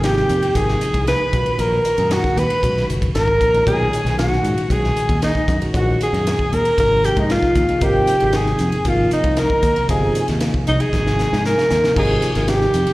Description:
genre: electric jazz fusion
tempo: 116 BPM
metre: 4/4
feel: straight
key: Ab major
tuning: A4 = 440 Hz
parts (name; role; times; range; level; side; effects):
- warm alto saxophone; melody; 0.0-12.9 s; Eb4 to B4; -19 LUFS; equal; slapback echo
- concert flute; second line; 0.0-11.7 s; Eb5 to B5; -26 LUFS; left 1 dB; none
- bell-like tine electric piano; accompaniment; 0.0-12.9 s; A#2 to Bb4; -23 LUFS; equal; phaser
- modern bright fingered electric bass; bass; 0.0-12.8 s; F#1 to Ab2; -21 LUFS; equal; none
- crisp fusion drum kit; drums; 0.0-12.9 s; crash cymbal, hi-hat, kick drum, ride cymbal, snare drum; -24 LUFS; equal; none
room: light reverb, studio reverb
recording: live gig heard through the venue's PA, recital hall reverb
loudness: -15 LUFS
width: side -18 dB against mid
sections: 0.0-12.0 A section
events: drum fill 10.9-12.0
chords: 0.0 Abmaj9; 1.3 Bmaj9; 6.8 Abmaj9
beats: 0.04 0.55 1.07 | 1.59 2.11 2.63 3.15 | 3.67 4.19 4.71 5.22 | 5.74 6.26 6.78 7.30 | 7.82 8.33 8.85 9.37 | 9.89 10.41 10.93 11.45 | 11.96 12.48

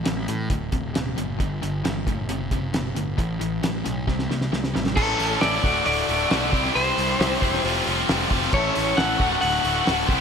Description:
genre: classic rock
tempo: 135 BPM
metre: 4/4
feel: straight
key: D mixolydian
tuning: A4 = 440 Hz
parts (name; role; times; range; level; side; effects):
- crunchy overdriven guitar; riff; 0.0-10.2 s; D2 to C5; -27 LUFS; left 11 dB; slapback echo
- overdriven electric guitar; riff; 0.0-10.2 s; D2 to C5; -28 LUFS; right 10 dB; none
- fuzz picked electric bass; bass; 0.0-10.2 s; D1 to A2; -29 LUFS; equal; overdrive
- cloth-damped thuddy drum kit; drums; 0.1-10.2 s; crash cymbal, hi-hat, kick drum, snare drum; -26 LUFS; equal; none
- tonewheel organ; sustained chords; 4.7-10.2 s; A3 to D5; -35 LUFS; equal; none
- lightly driven lead guitar; melody; 5.0-10.2 s; A4 to F#5; -24 LUFS; equal; slapback echo
room: moderate lush hall reverb, RT60 1.7 s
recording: big arena sound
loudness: -20 LUFS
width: side -6 dB against mid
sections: 0.0-5.0 A section; 5.0-10.2 B section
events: drum fill 4.1-5.0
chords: 0.0 A5; 0.5 D; 1.4 G5; 2.1 D/F#; 3.2 A5; 4.1 C5; 5.0 A; 5.6 D; 6.5 Cadd9; 7.6 Fadd9; 8.5 A; 9.2 D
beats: 0.05 0.50 0.95 | 1.40 1.84 2.29 2.74 | 3.19 3.63 4.08 4.53 | 4.97 5.42 5.86 6.31 | 6.75 7.20 7.64 8.09 | 8.53 8.98 9.42 9.87

